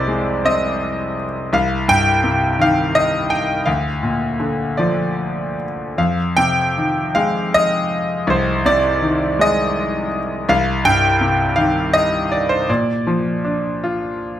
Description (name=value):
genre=classical, lyrical solo piano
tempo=50-57 BPM (dotted quarters)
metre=6/8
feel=rubato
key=unclear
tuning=A4 = 439 Hz
part: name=bright concert grand piano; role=solo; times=0.0-14.4 s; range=C2 to G5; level=-16 LUFS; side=equal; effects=none
room=light reverb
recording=close, detailed microphones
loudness=-15 LUFS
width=side -11 dB against mid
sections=0.0-14.4 A section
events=none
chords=0.0 Fm7; 1.5 Cm; 3.7 Bb/D; 6.0 Fm7; 10.5 Cm; 12.7 Bb